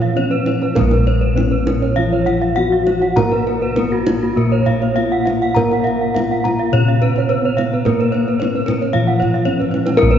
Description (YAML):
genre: Balinese gamelan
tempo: 100-118 BPM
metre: 4/4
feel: straight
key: Bb pelog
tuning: A4 = 440 Hz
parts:
  - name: gamelan-type bronze metallophone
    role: melody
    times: 0.0-10.2 s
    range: Bb3 to Bb4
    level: -20 LUFS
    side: left 1 dB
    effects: none
  - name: gamelan-type bronze metallophone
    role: accompaniment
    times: 0.0-10.2 s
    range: Db3-30c to Bb3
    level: -24 LUFS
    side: left 3 dB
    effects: none
  - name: gamelan-type bronze metallophone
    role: arpeggios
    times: 0.0-10.2 s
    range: Gb4-20c to Gb5-20c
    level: -22 LUFS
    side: right 3 dB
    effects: none
  - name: gamelan-type bossed gongs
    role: bass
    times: 0.0-10.2 s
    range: Bb1 to Bb4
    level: -19 LUFS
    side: equal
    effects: none
  - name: kendang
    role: percussion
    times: 0.0-10.2 s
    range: none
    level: -25 LUFS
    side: right 2 dB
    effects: none
  - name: gamelan-type bronze metallophone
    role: arpeggios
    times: 0.2-10.1 s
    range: F4-30c to Bb5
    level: -23 LUFS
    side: left 3 dB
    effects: none
room: wet cathedral reverb, RT60 6.2 s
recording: recorded in a church or concert hall, nothing above 7.5 kHz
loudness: -14 LUFS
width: side -9 dB against mid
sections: 0.0-10.0 A section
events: drum fill 9.5-10.0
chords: none